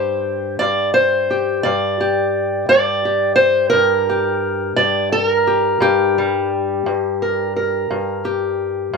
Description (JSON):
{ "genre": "acoustic country blues, solo or duo", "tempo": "58 BPM (dotted quarters)", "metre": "12/8", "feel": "straight", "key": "G minor", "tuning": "A4 = 441 Hz", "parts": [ { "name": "fingerpicked steel-string acoustic guitar", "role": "solo", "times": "0.0-9.0 s", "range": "G2 to D5", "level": "-15 LUFS", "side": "equal", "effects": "none" } ], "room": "light reverb", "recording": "none", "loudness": "-15 LUFS", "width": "side -4 dB against mid", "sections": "0.0-9.0 A section", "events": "none", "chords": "0.0 Gm", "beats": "0.60 | 1.64 2.68 3.73 4.77 | 5.81 6.85 7.89 8.94" }